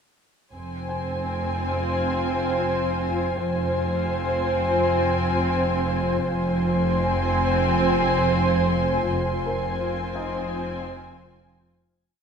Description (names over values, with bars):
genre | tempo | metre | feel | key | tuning
cinematic, suspense film score | 84 BPM | 4/4 | straight | F minor | A4 = 441 Hz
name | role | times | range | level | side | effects
muted studio violin section | melody | 0.5-11.7 s | Ab5 | -31 LUFS | left 2 dB | none
muted studio viola section | accompaniment | 0.5-11.7 s | C4 | -29 LUFS | equal | none
glassy FM pad | sustained chords | 1.4-11.9 s | F4 to Ab5 | -28 LUFS | left 3 dB | ensemble chorus, built-in reverb
muted studio cello section | bass | 0.5-11.7 s | F2 | -29 LUFS | right 2 dB | none
muted studio double bass section | bass | 0.5-11.7 s | F1 | -29 LUFS | right 2 dB | none
muted studio violin section | second line | 0.6-11.7 s | C5 | -29 LUFS | right 3 dB | none
clear grand piano | texture | 0.9-12.0 s | Eb4 to Ab5 | -38 LUFS | left 4 dB | none
muted studio violin section | texture | 6.2-11.6 s | Ab5 to C6 | -36 LUFS | left 2 dB | none
room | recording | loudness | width
wet scoring stage reverb, RT60 2.0 s | minimal, uncompressed stereo recording | -21 LUFS | side -6 dB against mid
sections
0.5-12.0 A section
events
fade-out 9.1-12.0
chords
0.5 Fm